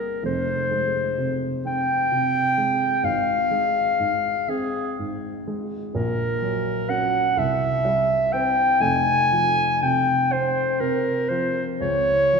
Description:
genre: classical, romantic duo for clarinet and grand piano.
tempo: 38-44 BPM (dotted quarters).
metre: 6/8.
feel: rubato.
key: F minor.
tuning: A4 = 440 Hz.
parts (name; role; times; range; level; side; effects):
warm clarinet; melody; 0.0-12.4 s; Ab4 to Ab5; -21 LUFS; left 1 dB; none.
dark grand piano; accompaniment; 0.0-12.4 s; F1 to C5; -26 LUFS; right 2 dB; none.
room: wet concert hall reverb, RT60 2.2 s.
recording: heard from further back in the room.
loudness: -20 LUFS.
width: side -5 dB against mid.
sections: 0.0-12.4 A section.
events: none.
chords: 0.3 Fm; 3.0 Fm/Ab; 5.9 Gb/Bb; 7.4 C; 8.8 Fm; 11.8 N.C..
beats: | 0.26 1.66 | 3.05 4.49 | 5.95 7.38 | 8.83 10.32 | 11.81.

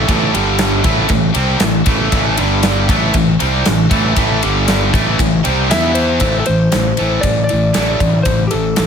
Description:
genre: hard rock.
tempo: 118 BPM.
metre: 4/4.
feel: straight.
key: A minor.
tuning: A4 = 438 Hz.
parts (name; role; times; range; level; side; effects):
distorted electric guitar; riff; 0.0-8.9 s; G2 to E4; -20 LUFS; right 12 dB; overdrive.
scooped high-gain guitar; riff; 0.0-8.9 s; G2 to E4; -19 LUFS; left 10 dB; distortion.
tight distorted guitar; riff; 0.0-6.2 s; G2 to E4; -19 LUFS; equal; distortion.
fuzz fingered electric bass; bass; 0.0-8.9 s; G1 to E2; -18 LUFS; equal; overdrive.
gated 80s drum kit; drums; 0.1-8.9 s; kick drum, ride cymbal, snare drum; -18 LUFS; equal; none.
lightly driven lead guitar; melody; 5.7-8.9 s; G4 to E5; -18 LUFS; left 1 dB; tape echo.
room: studio reverb.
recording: none.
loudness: -12 LUFS.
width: side -7 dB against mid.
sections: 0.0-6.2 A section; 6.2-8.9 B section.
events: none.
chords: 0.3 G5; 0.8 Am; 2.4 G5; 2.9 Am; 4.4 G5; 4.9 Am; 5.7 E5; 6.2 Am.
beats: | 0.08 0.59 1.10 1.61 | 2.12 2.63 3.15 3.66 | 4.17 4.68 5.19 5.70 | 6.21 6.72 7.23 7.74 | 8.26 8.77.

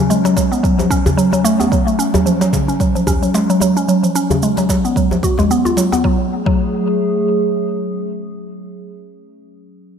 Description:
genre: organic downtempo.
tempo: 111 BPM.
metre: 4/4.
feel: swing 56% on 16ths.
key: F# minor.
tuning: A4 = 440 Hz.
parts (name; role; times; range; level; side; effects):
warbly tape-like pad; sustained chords; 0.0-9.3 s; F#3 to G#4; -20 LUFS; right 1 dB; chorus, built-in reverb, sidechain pumping.
mallet-like synth pluck; arpeggios; 0.0-6.6 s; C#3 to F#4; -15 LUFS; equal; chorus, ping-pong delay.
bronze singing bowl; texture; 0.0-6.1 s; F#3 to C#4; -32 LUFS; left 1 dB; none.
cabasa; drums; 0.1-6.0 s; none; -27 LUFS; right 7 dB; none.
djembe; percussion; 0.2-6.0 s; none; -22 LUFS; left 1 dB; none.
electronic kick drum; drums; 0.4-6.6 s; none; -18 LUFS; equal; none.
room: moderate plate reverb, RT60 3.1 s.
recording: bright 1980s-style digital production.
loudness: -13 LUFS.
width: side -7 dB against mid.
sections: 0.0-6.0 A section; 6.0-10.0 B section.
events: filter sweep on synth pluck 0.0-6.0.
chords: 0.0 F#5; 6.0 F#madd9.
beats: 0.10 0.64 1.18 | 1.72 2.26 2.80 3.34 | 3.88 4.42 4.96 5.50 | 6.04 6.58 7.12 7.67 | 8.21 8.75 9.29.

